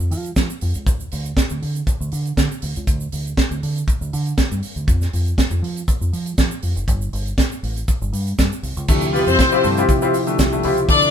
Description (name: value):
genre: disco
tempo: 120 BPM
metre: 4/4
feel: straight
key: D minor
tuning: A4 = 440 Hz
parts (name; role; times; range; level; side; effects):
- deep dub fingered electric bass; bass; 0.0-11.1 s; F#1 to E#3; -23 LUFS; equal; none
- egg shaker; percussion; 0.0-11.1 s; none; -36 LUFS; right 6 dB; none
- tight funk drum kit; drums; 0.1-11.0 s; crash cymbal, hi-hat, kick drum, snare drum; -20 LUFS; equal; none
- clear grand piano; accompaniment; 8.9-11.0 s; D3 to G4; -20 LUFS; left 2 dB; none
- tonewheel organ; sustained chords; 8.9-11.1 s; C3 to A4; -22 LUFS; left 1 dB; overdrive, slow rotary speaker
- clear studio string section; second line; 9.1-11.1 s; B3 to D5; -16 LUFS; left 4 dB; none
room: moderate studio reverb, RT60 0.8 s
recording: band playing live in one room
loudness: -17 LUFS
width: side -8 dB against mid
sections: 0.0-8.9 A section; 8.9-11.1 B section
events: none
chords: 0.0 C#; 0.9 N.C.; 8.9 Dm11